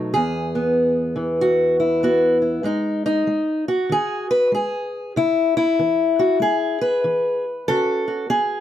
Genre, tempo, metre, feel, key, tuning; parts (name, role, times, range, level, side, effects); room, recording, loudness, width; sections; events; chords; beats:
folk, solo fingerstyle acoustic guitar; 96 BPM; 4/4; swing 63% on 8ths; A4 = 440 Hz
fingerpicked acoustic archtop guitar; solo; 0.0-8.6 s; E2 to B4; -18 LUFS; left 1 dB
light reverb; dark, warm production; -18 LUFS; side -11 dB against mid
0.0-2.7 A section; 2.7-8.6 B section
0.1 Eadd9; 2.7 G#5; 5.2 C#m; 7.7 F#m/C#
| 0.14 0.77 1.40 2.03 | 2.66 3.29 3.91 4.54 | 5.17 5.79 6.42 7.05 | 7.67 8.30